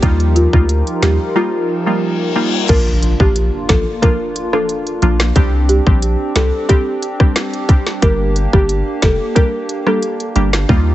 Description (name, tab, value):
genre	dancehall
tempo	90 BPM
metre	4/4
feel	straight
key	Bb major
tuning	A4 = 440 Hz
part	wavetable chord stab	accompaniment	0.0-10.9 s	F3 to G4	-20 LUFS	right 1 dB	sidechain pumping
part	hollow soft pad	sustained chords	0.0-10.9 s	F3 to Bb4	-22 LUFS	equal	chorus, sidechain pumping
part	punchy sub bass	bass	0.0-10.9 s	F1 to Eb2	-15 LUFS	equal	none
part	island pop drum kit	drums	0.0-10.9 s	crash cymbal, hi-hat, kick drum, rim click, snare drum	-14 LUFS	equal	none
part	folk marimba with soft mallets	melody	0.4-10.0 s	F4 to Bb4	-20 LUFS	equal	digital delay
part	reverse cymbal and impact	sound effects	1.8-5.4 s	none	-26 LUFS	left 3 dB	none
room	little or no reverb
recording	heavily compressed radio sound, nothing above 8.0 kHz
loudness	-12 LUFS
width	side -14 dB against mid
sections	0.0-2.7 A section; 2.7-10.9 B section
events	break 1.4-2.7; reverse cymbal 1.8-2.7; impact 2.7-5.4; hi-hats muted 10.7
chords	0.0 Ebadd9; 2.7 Bb; 5.4 Csus2; 8.0 Gm